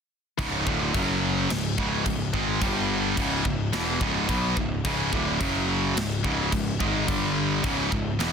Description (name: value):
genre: heavy metal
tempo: 108 BPM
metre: 4/4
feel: straight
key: C# minor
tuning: A4 = 439 Hz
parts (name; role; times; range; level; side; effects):
- high-gain distorted guitar; riff; 0.4-8.3 s; C#2 to B3; -28 LUFS; left 11 dB; distortion
- high-gain distorted guitar; riff; 0.4-8.3 s; C#2 to B3; -27 LUFS; right 12 dB; distortion
- fuzz picked electric bass; bass; 0.4-8.3 s; C#1 to B1; -30 LUFS; equal; overdrive
- tight metal drum kit; drums; 0.4-8.3 s; crash cymbal, kick drum, snare drum; -31 LUFS; equal; none
room: small room ambience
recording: dense, heavily limited modern master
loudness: -23 LUFS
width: side -6 dB against mid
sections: 0.4-8.3 A section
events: none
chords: 0.4 C#5; 0.9 F#5; 1.5 C#5; 2.6 G5; 3.2 C#m; 5.4 F#5; 6.0 C#5; 7.1 G5; 7.6 C#m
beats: | 0.39 0.94 1.50 2.06 | 2.61 3.17 3.73 4.29 | 4.84 5.40 5.96 6.52 | 7.08 7.63 8.19